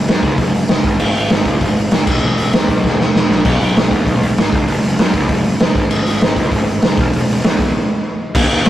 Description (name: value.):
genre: punk rock.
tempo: 196 BPM.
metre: 4/4.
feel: straight.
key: unclear.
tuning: A4 = 439 Hz.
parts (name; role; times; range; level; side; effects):
fuzz picked electric bass; bass; 0.0-8.7 s; E1 to F#2; -18 LUFS; equal; overdrive.
raw garage drum kit; drums; 0.1-8.7 s; crash cymbal, hi-hat, kick drum, snare drum, splash cymbal; -13 LUFS; equal; none.
room: light reverb.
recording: rough rehearsal-room recording.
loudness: -12 LUFS.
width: side -13 dB against mid.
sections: 0.0-8.3 A section.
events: drum fill 2.8-3.5; break 7.7-8.3.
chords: none.